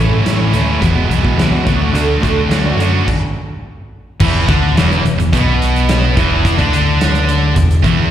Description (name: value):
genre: quiet-loud alternative rock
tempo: 107 BPM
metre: 4/4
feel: straight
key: E mixolydian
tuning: A4 = 440 Hz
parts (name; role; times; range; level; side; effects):
- picked steel-string acoustic guitar; arpeggios; 0.0-2.8 s; D3 to F#4; -21 LUFS; right 3 dB; none
- thick fuzz guitar; riff; 0.0-8.1 s; E2 to D4; -16 LUFS; left 6 dB; distortion
- tight distorted guitar; riff; 0.0-8.1 s; E2 to F#4; -18 LUFS; right 12 dB; distortion, slapback echo
- picked electric bass; bass; 0.0-8.1 s; E1 to F#2; -16 LUFS; equal; none
- big rock drum kit; drums; 0.3-8.0 s; crash cymbal, hi-hat, kick drum, snare drum; -18 LUFS; equal; none
room: small room ambience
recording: live gig heard through the venue's PA, recital hall reverb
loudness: -11 LUFS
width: side -10 dB against mid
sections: 0.0-4.2 A section; 4.2-8.1 B section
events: stop 3.1-4.2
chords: 0.0 A; 0.8 Eadd9; 1.7 D; 4.2 E5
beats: 0.25 0.81 1.38 | 1.94 2.50 3.07 3.63 | 4.19 4.75 5.31 5.88 | 6.44 7.00 7.56